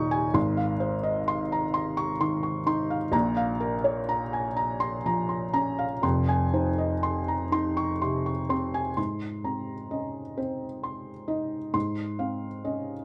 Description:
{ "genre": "neoclassical minimalist piano", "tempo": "40-44 BPM (dotted quarters)", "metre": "6/8", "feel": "rubato", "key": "Ab major", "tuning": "A4 = 443 Hz", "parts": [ { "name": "felt-muted upright piano", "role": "solo", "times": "0.0-13.0 s", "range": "Eb1 to Eb6", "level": "-28 LUFS", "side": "equal", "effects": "none" } ], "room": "light reverb", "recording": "none", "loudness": "-28 LUFS", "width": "mono", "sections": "0.0-9.0 A section; 9.0-13.0 B section", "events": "none", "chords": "0.4 Ab6; 3.1 Bbm; 6.0 Fm7; 9.0 Abadd9; 11.7 Fm7/Ab" }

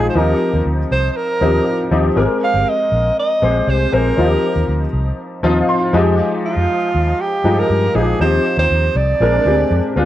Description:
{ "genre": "polished 1980s jazz-funk pop", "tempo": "119 BPM", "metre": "4/4", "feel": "straight", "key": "Eb major", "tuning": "A4 = 445 Hz", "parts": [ { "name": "clear alto saxophone", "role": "melody", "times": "0.0-10.0 s", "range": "F4 to F5", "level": "-18 LUFS", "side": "right 2 dB", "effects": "cassette tape, plate reverb" }, { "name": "warm grand piano", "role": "accompaniment", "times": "0.0-10.1 s", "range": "F3 to C6", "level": "-17 LUFS", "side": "left 2 dB", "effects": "ensemble chorus, plate reverb" }, { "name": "vintage muted fingered electric bass", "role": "bass", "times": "0.0-10.1 s", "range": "G1 to G2", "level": "-18 LUFS", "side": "equal", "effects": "none" } ], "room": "moderate studio reverb, RT60 0.6 s", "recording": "home recording on cassette", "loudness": "-14 LUFS", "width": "side -13 dB against mid", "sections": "0.0-10.1 A section", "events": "grand piano fill 5.4-6.2", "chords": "0.2 Eb69; 2.2 Abmaj9; 4.2 Eb69; 5.9 Fm9; 8.2 Eb69; 9.2 Bb9" }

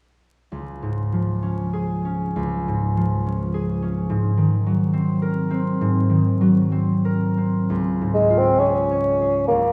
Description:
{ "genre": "classical, romantic duo for bassoon and harp", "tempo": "58-72 BPM", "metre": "4/4", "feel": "rubato", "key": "Db major", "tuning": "A4 = 443 Hz", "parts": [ { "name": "concert harp", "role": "accompaniment", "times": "0.5-9.7 s", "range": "Db2 to Db5", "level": "-22 LUFS", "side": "equal", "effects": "none" }, { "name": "mellow bassoon", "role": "melody", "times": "8.1-9.7 s", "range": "Ab3 to Db4", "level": "-19 LUFS", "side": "equal", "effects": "none" } ], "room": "wet concert hall reverb, RT60 1.9 s", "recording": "recorded in a church or concert hall, vinyl crackle, faint mains hum", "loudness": "-21 LUFS", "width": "mono", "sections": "0.5-7.7 A section; 7.7-9.7 B section", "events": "none", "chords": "0.5 Db; 4.1 Ab9; 7.7 Db" }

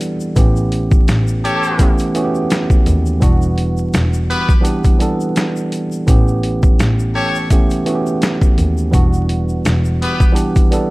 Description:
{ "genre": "hip hop, boom-bap hip-hop", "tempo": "84 BPM", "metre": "4/4", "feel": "swing 55% on 16ths", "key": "unclear", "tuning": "A4 = 442 Hz", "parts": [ { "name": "tine electric piano", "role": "accompaniment", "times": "0.0-10.9 s", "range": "E3 to A4", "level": "-18 LUFS", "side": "right 1 dB", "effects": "none" }, { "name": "boom bap sampler-style drum kit", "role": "drums", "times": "0.0-10.9 s", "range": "hi-hat, kick drum, snare drum", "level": "-14 LUFS", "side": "equal", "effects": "none" }, { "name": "tube shaker", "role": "percussion", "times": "0.0-10.9 s", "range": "none", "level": "-38 LUFS", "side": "left 6 dB", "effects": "none" }, { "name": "rich double bass", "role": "bass", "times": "0.4-9.9 s", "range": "E1 to D#2", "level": "-17 LUFS", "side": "equal", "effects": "none" }, { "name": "clear trumpet section", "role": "stabs", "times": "1.4-10.2 s", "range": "B3 to C#5", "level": "-20 LUFS", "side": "left 1 dB", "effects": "slapback echo" } ], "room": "small room ambience", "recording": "vinyl crackle", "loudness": "-12 LUFS", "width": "side -21 dB against mid", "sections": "0.0-10.9 A section", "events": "none", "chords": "0.4 A7; 3.2 Em9; 6.1 A7; 8.9 Em9" }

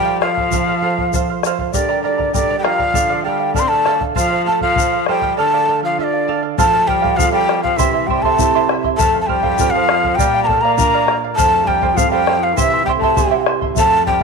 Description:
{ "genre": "andean folk, Andean ensemble", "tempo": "100 BPM", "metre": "2/4", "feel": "straight", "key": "unclear", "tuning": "A4 = 440 Hz", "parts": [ { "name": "breathy quena", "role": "melody", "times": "0.0-14.2 s", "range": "D5 to C6", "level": "-17 LUFS", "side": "equal", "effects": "none" }, { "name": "warm tenor saxophone", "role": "second line", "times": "0.0-14.2 s", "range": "D3 to C4", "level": "-22 LUFS", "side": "left 10 dB", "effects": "none" }, { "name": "charango", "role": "accompaniment", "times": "0.0-14.2 s", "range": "E4 to C6", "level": "-21 LUFS", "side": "right 12 dB", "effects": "none" }, { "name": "flamenco guitar", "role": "accompaniment", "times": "0.0-14.2 s", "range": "F2 to D5", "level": "-24 LUFS", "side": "right 11 dB", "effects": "none" }, { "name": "bombo", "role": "percussion", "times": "0.2-14.2 s", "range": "none", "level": "-21 LUFS", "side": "left 4 dB", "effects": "none" }, { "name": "egg shaker", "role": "percussion", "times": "0.5-13.9 s", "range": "none", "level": "-28 LUFS", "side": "left 17 dB", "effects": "none" } ], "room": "moderate echo chamber reverb, RT60 2.2 s", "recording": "1960s-style stereo with parts hard left and right", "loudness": "-13 LUFS", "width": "side -4 dB against mid", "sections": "0.0-6.6 A section; 6.6-14.2 B section", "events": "none", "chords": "0.0 F; 1.7 Gm; 3.0 Dm; 4.2 F; 5.4 Dm; 6.6 F; 7.8 C; 9.0 F; 10.2 Bb; 11.4 F; 12.6 C" }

